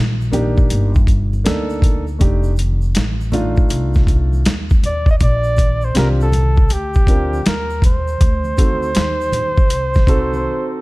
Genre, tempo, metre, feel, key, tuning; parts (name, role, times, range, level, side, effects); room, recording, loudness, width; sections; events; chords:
hip hop, jazz-hop; 80 BPM; 4/4; swing 65% on 16ths; A4 = 440 Hz
upright bass; bass; 0.0-10.5 s; F1 to Eb2; -19 LUFS; equal
tube shaker and congas; percussion; 0.2-10.5 s; -30 LUFS; right 1 dB
dark grand piano; accompaniment; 0.3-10.8 s; A3 to Bb4; -22 LUFS; right 1 dB
boom bap sampler-style drum kit; drums; 0.3-10.3 s; hi-hat, kick drum, snare drum; -14 LUFS; equal
breathy flugelhorn; melody; 4.9-10.8 s; G4 to Eb5; -21 LUFS; right 1 dB
studio ambience; dark, warm production; -13 LUFS; side -21 dB against mid
0.0-10.8 A section
break 10.5-10.8
0.0 Cm9 (rootless); 2.2 F13; 5.2 Bb69; 8.2 D7b9